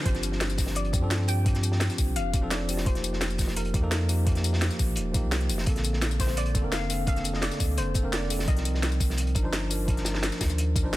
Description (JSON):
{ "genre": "liquid drum and bass", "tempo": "171 BPM", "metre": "4/4", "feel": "straight", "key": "unclear", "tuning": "A4 = 435 Hz", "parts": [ { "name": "bell-like tine electric piano", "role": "accompaniment", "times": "0.0-11.0 s", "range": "D3 to C5", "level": "-32 LUFS", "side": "equal", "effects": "vintage 12-bit sampler grit, ping-pong delay" }, { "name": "soft round pluck", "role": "melody", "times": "0.1-3.9, 6.2-8.8 s", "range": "Bb4 to G5", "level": "-36 LUFS", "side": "left 2 dB", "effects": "chorus, dub echo" }, { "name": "warm sub bass", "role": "bass", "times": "0.1-11.0 s", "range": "Eb1 to G2", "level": "-28 LUFS", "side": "equal", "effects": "none" }, { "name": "crunchy breakbeat drum kit", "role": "drums", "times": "0.1-11.0 s", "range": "hi-hat, snare drum", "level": "-37 LUFS", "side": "equal", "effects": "high-pass filter on hats, high-pass filter on snare, high-pass filter on room" }, { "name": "drum and bass drum kit", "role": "drums", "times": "0.1-11.0 s", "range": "hi-hat, snare drum, tambourine", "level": "-32 LUFS", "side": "left 1 dB", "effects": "none" }, { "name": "electronic kick drum", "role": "drums", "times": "0.1-10.8 s", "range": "none", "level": "-27 LUFS", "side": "equal", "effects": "none" } ], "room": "little or no reverb", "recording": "dense, heavily limited modern master", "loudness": "-24 LUFS", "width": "side -16 dB against mid", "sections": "0.1-11.0 A section", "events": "drop 0.1-11.0", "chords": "0.1 G7sus4; 2.9 F9sus4; 5.7 Bbmaj9; 8.5 Cm11" }